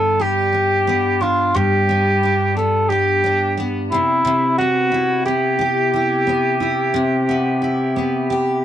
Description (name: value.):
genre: pop.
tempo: 89 BPM.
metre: 4/4.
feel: straight.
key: unclear.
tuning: A4 = 440 Hz.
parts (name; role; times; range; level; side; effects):
dark cor anglais; melody; 0.0-8.6 s; E4 to A4; -17 LUFS; equal; cassette tape.
picked steel-string acoustic guitar; accompaniment; 0.0-8.6 s; G2 to G4; -20 LUFS; left 1 dB; double-tracked left and right, cassette tape.
room: light reverb.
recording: home recording on cassette.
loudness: -15 LUFS.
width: side -11 dB against mid.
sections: 0.0-8.6 A section.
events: none.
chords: 0.0 G; 3.9 Cmaj7.